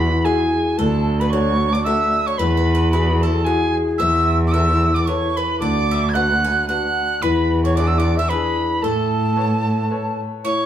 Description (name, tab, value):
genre	celtic folk, Celtic waltz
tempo	112 BPM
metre	3/4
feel	swing 56% on 8ths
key	unclear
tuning	A4 = 440 Hz
part	tin whistle	melody	0.0-10.7 s	G#5 to G#6	-22 LUFS	right 2 dB	plate reverb
part	bowl-back mandolin	second line	0.0-10.7 s	G#4 to G#5	-29 LUFS	right 4 dB	none
part	hollow wooden flute	second line	0.0-10.7 s	G#4 to F#5	-27 LUFS	left 4 dB	none
part	bright concert grand piano	accompaniment	0.0-10.7 s	A2 to C#5	-23 LUFS	left 3 dB	none
part	dark cello	bass	0.0-10.2 s	D2 to A2	-20 LUFS	equal	none
room	wet studio reverb, RT60 0.7 s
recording	heard from further back in the room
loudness	-16 LUFS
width	side -10 dB against mid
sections	0.0-10.4 A section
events	none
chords	0.0 Eadd9; 0.8 D; 2.4 Eadd9; 4.0 Esus4; 5.6 D6; 7.2 E7; 8.8 Aadd9